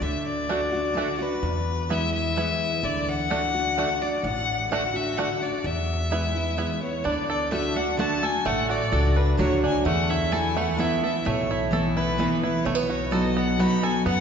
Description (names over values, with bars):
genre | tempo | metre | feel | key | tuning
bluegrass | 128 BPM | 3/4 | straight | unclear | A4 = 440 Hz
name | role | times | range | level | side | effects
rich fiddle | melody | 0.0-14.2 s | B4 to B5 | -27 LUFS | left 3 dB | none
picked steel-string acoustic guitar | accompaniment | 0.0-14.2 s | E2 to F#4 | -26 LUFS | equal | none
upright bass | bass | 0.0-14.2 s | A1 to F#2 | -30 LUFS | equal | none
bluegrass banjo | melody | 0.5-14.2 s | E3 to A4 | -29 LUFS | right 4 dB | none
room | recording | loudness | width
wet church reverb, RT60 3.3 s | recorded in a church or concert hall, nothing above 7.8 kHz | -22 LUFS | side -7 dB against mid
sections
0.0-7.1 A section; 7.1-14.2 B section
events
none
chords
0.0 D; 1.4 E; 2.8 D; 5.6 E; 7.1 D; 9.9 Esus4; 12.7 B